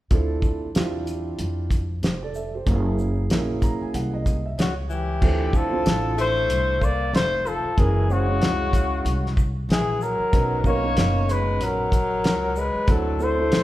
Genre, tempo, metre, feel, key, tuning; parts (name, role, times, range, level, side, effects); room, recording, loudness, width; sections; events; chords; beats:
hip hop, jazz-hop; 94 BPM; 4/4; swing 59% on 16ths; A4 = 440 Hz
dark concert grand piano; accompaniment; 0.1-13.6 s; B2 to A#5; -28 LUFS; right 4 dB
upright bass; bass; 0.1-13.6 s; F1 to F2; -26 LUFS; equal
cloth-damped thuddy drum kit; drums; 0.1-13.6 s; crash cymbal, hi-hat, kick drum, shaker, snare drum; -22 LUFS; equal
trumpet with bucket mute; melody; 4.6-13.6 s; F#4 to D5; -25 LUFS; left 2 dB
breathy tenor saxophone; second line; 4.6-13.6 s; C#3 to Bb3; -30 LUFS; left 3 dB
moderate recital hall reverb, RT60 1.6 s; recorded in a church or concert hall; -20 LUFS; side -15 dB against mid
0.1-5.2 A section; 5.2-13.6 B section
grand piano fill 3.3-5.2
0.1 Dm9; 2.7 F#7; 5.2 Dm9; 7.8 F#7; 10.3 Bmaj7; 12.9 D7
| 0.11 0.75 1.39 2.03 | 2.67 3.31 3.94 4.58 | 5.22 5.86 6.50 7.13 | 7.77 8.41 9.05 9.69 | 10.33 10.96 11.60 12.24 | 12.88 13.52